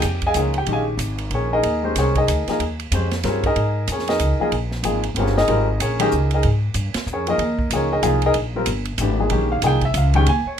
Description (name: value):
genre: modal jazz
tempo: 188 BPM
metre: 3/4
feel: swing 61% on 8ths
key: Eb mixolydian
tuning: A4 = 439 Hz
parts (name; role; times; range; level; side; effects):
- warm baby grand piano; accompaniment; 0.0-10.6 s; Eb3 to Ab5; -20 LUFS; left 1 dB; none
- upright bass; bass; 0.0-10.5 s; G1 to Ab2; -21 LUFS; equal; none
- open jazz drum kit; drums; 0.0-10.4 s; hi-hat, kick drum, ride cymbal, snare drum; -28 LUFS; right 3 dB; none
room: light reverb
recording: minimal, uncompressed stereo recording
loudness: -18 LUFS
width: side -8 dB against mid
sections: 0.0-10.6 A section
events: none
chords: 0.0 Eb9sus4